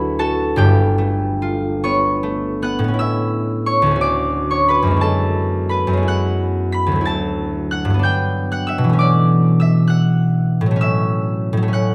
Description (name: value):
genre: classical, solo harp piece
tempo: 46-66 BPM (dotted quarters)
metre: 6/8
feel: rubato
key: A mixolydian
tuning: A4 = 440 Hz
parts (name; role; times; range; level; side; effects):
- concert harp; solo; 0.0-11.9 s; G1 to B6; -18 LUFS; equal; none
room: light reverb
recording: close, detailed microphones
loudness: -18 LUFS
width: mono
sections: 0.0-3.0 A section; 3.0-11.9 B section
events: none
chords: 0.0 Dadd9; 0.6 G9; 3.0 Aadd9; 4.0 Dmaj7; 5.0 F#m11; 7.0 Dadd9; 8.0 Gmaj7; 9.0 Bm11; 10.8 A6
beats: | 0.56 1.83 | 2.97 3.98 | 4.99 6.05 | 7.05 8.03 | 8.97 9.89 | 10.81 11.72